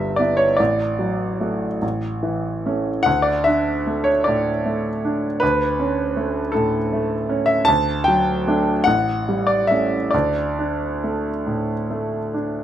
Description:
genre	classical, romantic nocturne for solo piano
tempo	44-54 BPM (dotted quarters)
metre	12/8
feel	rubato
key	D major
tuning	A4 = 440 Hz
part	clear grand piano	solo	0.0-12.6 s	G1 to A5	-18 LUFS	equal	none
room	light reverb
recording	none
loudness	-18 LUFS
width	side -10 dB against mid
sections	0.0-12.6 A section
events	none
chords	0.0 Em/G; 0.6 D/A; 1.8 A; 3.1 D5; 5.4 A/D; 7.7 D; 8.9 A7; 10.1 D5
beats	0.60 1.82 | 3.07 4.27 5.42 6.54 | 7.67 8.86 10.13 11.46

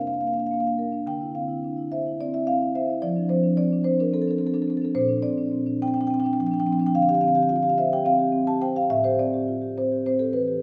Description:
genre	classical, contemporary piece for solo marimba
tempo	215 BPM (eighths)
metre	7/8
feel	rubato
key	F major, D minor from 5.0 s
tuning	A4 = 440 Hz
part	marimba with soft mallets	solo	0.0-10.6 s	A2 to A5	-24 LUFS	equal	none
room	wet recital hall reverb, RT60 1.7 s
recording	heard from further back in the room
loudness	-24 LUFS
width	mono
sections	0.0-10.6 A section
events	none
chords	0.0 C11; 1.1 Dm9; 3.0 F6; 5.0 Bbadd9; 6.9 Dm7; 8.9 Am7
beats	0.23 0.51 0.79 | 1.07 1.35 1.63 1.91 2.19 2.47 2.74 | 3.02 3.29 3.57 3.84 4.12 4.40 4.68 | 4.95 5.23 5.53 5.82 6.11 6.39 6.67 | 6.94 7.22 7.49 7.77 8.05 8.34 8.62 | 8.90 9.18 9.46 9.75 10.04 10.33

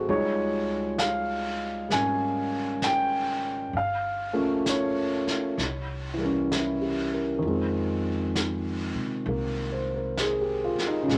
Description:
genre	jazz ballad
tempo	65 BPM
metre	4/4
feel	swing 66% on 8ths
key	unclear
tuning	A4 = 440 Hz
part	dark baby grand piano	accompaniment	0.0-11.2 s	Db3 to Ab5	-28 LUFS	equal	none
part	upright bass	bass	0.0-11.2 s	G1 to C3	-38 LUFS	equal	none
part	vintage brush drum kit	drums	0.1-11.2 s	brushed snare drum, hi-hat, snare drum	-36 LUFS	equal	none
room	light reverb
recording	none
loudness	-28 LUFS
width	mono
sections	0.0-11.2 A section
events	none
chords	0.1 Dbadd9; 3.7 Gm7b5; 5.6 C7b9; 7.4 Fm7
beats	| 0.07 0.99 1.90 2.82 | 3.73 4.66 5.58 6.50 | 7.43 8.35 9.26 10.18 | 11.09

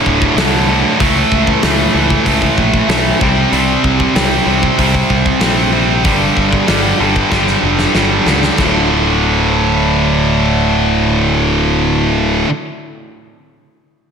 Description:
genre	heavy metal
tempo	95 BPM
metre	4/4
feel	straight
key	unclear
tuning	A4 = 440 Hz
part	heavy high-gain guitar	riff	0.0-12.5 s	D2 to C4	-16 LUFS	left 10 dB	distortion, slapback echo
part	high-gain distorted guitar	riff	0.0-12.5 s	D2 to C4	-14 LUFS	right 8 dB	distortion
part	modern bright picked electric bass	bass	0.1-12.4 s	D1 to C#2	-18 LUFS	equal	none
part	big rock drum kit	drums	0.1-8.7 s	crash cymbal, hi-hat, kick drum, snare drum	-18 LUFS	left 1 dB	none
room	moderate concert hall reverb, RT60 2.1 s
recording	big arena sound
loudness	-10 LUFS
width	side -6 dB against mid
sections	0.0-8.6 A section; 8.6-11.1 B section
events	drum fill 7.3-8.6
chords	0.0 D5; 1.0 A/C#; 3.2 C5; 6.0 G5; 8.6 D5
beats	0.36 | 0.99 1.62 2.25 2.88 | 3.52 4.15 4.78 5.41 | 6.04 6.68 7.31 7.94 | 8.58 9.21 9.84 10.48

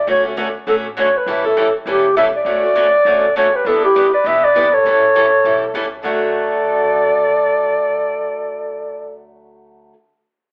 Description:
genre	acoustic string swing (jazz manouche)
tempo	201 BPM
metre	4/4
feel	swing 58% on 8ths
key	D major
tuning	A4 = 440 Hz
part	breathy clarinet	melody	0.0-9.2 s	G4 to E5	-17 LUFS	equal	none
part	upright bass	bass	0.0-9.9 s	E1 to E2	-44 LUFS	equal	none
part	picked steel-string acoustic guitar	accompaniment	0.1-9.9 s	D3 to A4	-25 LUFS	equal	none
part	picked steel-string acoustic guitar	accompaniment	0.1-9.9 s	D3 to B4	-29 LUFS	equal	none
part	warm soprano saxophone	second line	3.4-9.2 s	E4 to B4	-24 LUFS	equal	none
room	moderate studio reverb, RT60 0.8 s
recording	band playing live in one room, telephone sound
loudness	-15 LUFS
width	mono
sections	0.0-3.6 A section; 3.6-6.0 B section; 6.0-8.4 C section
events	none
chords	0.1 Dmaj7; 1.3 A7; 2.5 Dmaj7; 3.6 Em7; 4.8 A7; 6.0 D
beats	| 0.07 0.37 0.67 0.96 | 1.26 1.56 1.86 2.16 | 2.46 2.75 3.05 3.35 | 3.65 3.95 4.25 4.54 | 4.84 5.14 5.44 5.74 | 6.04 6.34 6.63 6.93 | 7.23 7.53 7.83 8.13

